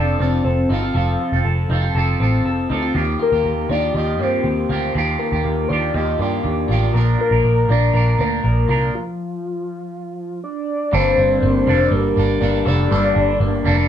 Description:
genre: indie pop.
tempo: 120 BPM.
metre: 4/4.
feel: straight.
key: G minor.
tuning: A4 = 439 Hz.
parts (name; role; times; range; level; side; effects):
soft octave-layered synth lead; melody; 0.0-13.9 s; F4 to F5; -21 LUFS; left 2 dB; chorus, phaser.
clean electric guitar; accompaniment; 0.0-13.9 s; G2 to Bb4; -23 LUFS; right 4 dB; phaser.
electric guitar through a small old amp; arpeggios; 0.0-13.9 s; G2 to Bb4; -23 LUFS; left 4 dB; warbly pitch drift.
vintage muted picked electric bass; bass; 0.0-13.9 s; F1 to G2; -19 LUFS; right 1 dB; none.
room: wet studio reverb, RT60 0.5 s.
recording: band playing live in one room.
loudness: -16 LUFS.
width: side -10 dB against mid.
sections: 0.0-10.9 A section; 10.9-13.9 B section.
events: stop 8.9-10.9.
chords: 0.0 F; 2.9 Ebadd9; 6.9 Bb; 8.9 N.C.; 10.9 Gmadd9.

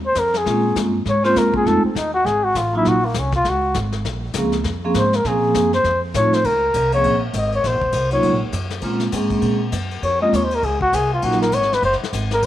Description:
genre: jazz, small-group swing and bop.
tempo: 201 BPM.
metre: 4/4.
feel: swing 60% on 8ths.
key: Bb minor.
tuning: A4 = 441 Hz.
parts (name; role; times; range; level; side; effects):
upright bass; bass; 0.0-12.5 s; Eb1 to Bb2; -24 LUFS; right 1 dB; none.
trumpet with bucket mute; melody; 0.1-12.5 s; Bb3 to Eb5; -18 LUFS; left 1 dB; none.
vintage brush drum kit; drums; 0.2-12.5 s; brushed snare drum, hi-hat, kick drum, ride cymbal, snare drum; -28 LUFS; left 5 dB; none.
vibraphone with soft mallets; accompaniment; 0.5-11.4 s; F3 to Ab4; -21 LUFS; right 2 dB; none.
room: light reverb.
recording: 1960s-style stereo.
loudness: -16 LUFS.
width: side -12 dB against mid.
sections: 0.0-6.4 A section; 6.4-12.5 A section.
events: muted trumpet solo 0.0-12.5.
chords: 0.0 Bbm7; 1.7 F7#9; 2.9 Ab9; 4.0 Bbm7; 5.8 F7; 6.4 Bbm7; 7.6 Ebm7; 8.8 Bbm7; 11.2 Ebm7.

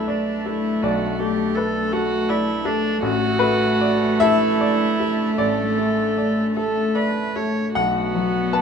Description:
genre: neoclassical piano and strings.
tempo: 49-56 BPM (dotted quarters).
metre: 6/8.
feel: rubato.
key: unclear.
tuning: A4 = 438 Hz.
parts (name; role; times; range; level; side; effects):
rich cello; second line; 0.0-8.6 s; A3 to B3; -24 LUFS; right 3 dB; none.
clear grand piano; accompaniment; 0.0-8.6 s; A1 to A5; -22 LUFS; left 3 dB; none.
rich viola; accompaniment; 0.0-8.6 s; D4 to C#5; -24 LUFS; right 2 dB; none.
warbly tape-like pad; sustained chords; 0.0-8.6 s; A3 to F#5; -27 LUFS; left 5 dB; chorus, built-in reverb.
room: light reverb.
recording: minimal, uncompressed stereo recording.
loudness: -18 LUFS.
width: side -6 dB against mid.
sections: 0.0-8.6 A section.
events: none.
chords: 0.0 Bm7; 3.0 Asus4; 7.7 Bm.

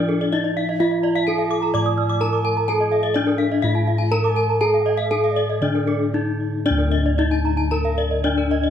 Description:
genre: Balinese gamelan.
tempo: 114-128 BPM.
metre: 4/4.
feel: straight.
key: D pelog.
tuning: A4 = 440 Hz.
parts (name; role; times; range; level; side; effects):
gamelan-type bronze metallophone; melody; 0.0-8.7 s; D4 to D5; -22 LUFS; left 2 dB; none.
gamelan-type bronze metallophone; arpeggios; 0.0-8.6 s; A4-45c to E6+50c; -28 LUFS; right 5 dB; none.
gamelan-type bossed gongs; bass; 0.0-8.7 s; D2 to A4-45c; -21 LUFS; equal; none.
gamelan-type bronze metallophone; arpeggios; 0.2-8.7 s; Bb4-40c to D6; -27 LUFS; left 4 dB; tape echo.
mellow bass bansuri; second line; 1.0-6.2 s; D5 to Bb5-34c; -30 LUFS; right 6 dB; none.
room: moderate recital hall reverb, RT60 1.6 s.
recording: dark, warm production.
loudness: -18 LUFS.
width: side -9 dB against mid.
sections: 0.0-6.7 A section; 6.7-8.7 B section.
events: break 5.9-6.7.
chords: none.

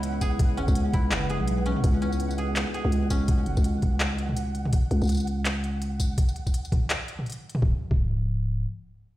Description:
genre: half-time drum and bass.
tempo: 166 BPM.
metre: 4/4.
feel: swing 59% on 16ths, half-time.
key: C# minor.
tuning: A4 = 440 Hz.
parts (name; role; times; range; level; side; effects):
deep dark ambient pad; sustained chords; 0.0-3.3 s; G#3 to D#5; -34 LUFS; left 1 dB; chorus, built-in reverb, sidechain pumping.
koto; arpeggios; 0.0-5.6 s; C#4 to G#4; -35 LUFS; equal; digital delay.
growling 808-style bass; bass; 0.0-8.7 s; C#1 to C#2; -26 LUFS; equal; none.
organic electronic drum kit; drums; 0.0-7.6 s; handclaps, hi-hat, tambourine, toms; -31 LUFS; equal; overdrive, small room ambience.
flickering grainy texture; texture; 0.0-6.2 s; F#5; -39 LUFS; right 4 dB; built-in reverb.
electronic kick drum; drums; 0.2-8.0 s; none; -23 LUFS; equal; overdrive, small room ambience.
room: little or no reverb.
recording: played on a big sound system in a bare room, stone room reverb.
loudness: -23 LUFS.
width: side -15 dB against mid.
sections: 0.0-7.6 A section; 7.6-9.2 B section.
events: drop 0.0-7.6.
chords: 0.0 E/C#; 1.8 D#dim/C#; 4.7 C#sus4; 7.6 N.C..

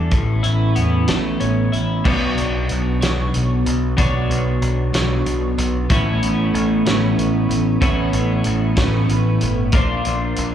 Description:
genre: indie rock.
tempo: 62 BPM (dotted quarters).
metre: 6/8.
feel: straight.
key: unclear.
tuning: A4 = 440 Hz.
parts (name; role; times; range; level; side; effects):
twelve-string electric guitar; riff; 0.0-10.5 s; A2 to C#5; -22 LUFS; left 5 dB; wide subtle chorus, slapback echo.
twelve-string electric guitar; riff; 0.0-10.5 s; A2 to C#5; -22 LUFS; right 6 dB; analog chorus, analog delay, slapback echo.
modern bright picked electric bass; bass; 0.0-10.5 s; G1 to E2; -21 LUFS; equal; none.
loose indie drum kit; drums; 0.1-10.5 s; crash cymbal, hi-hat, kick drum, snare drum; -22 LUFS; equal; none.
room: small room ambience.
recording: live gig heard through the venue's PA, club reverb.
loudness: -16 LUFS.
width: side -9 dB against mid.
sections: 0.0-2.1 A section; 2.1-10.5 B section.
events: none.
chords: 0.1 Aadd9; 2.1 Bmadd9; 5.9 Aadd9; 9.7 Bbadd9.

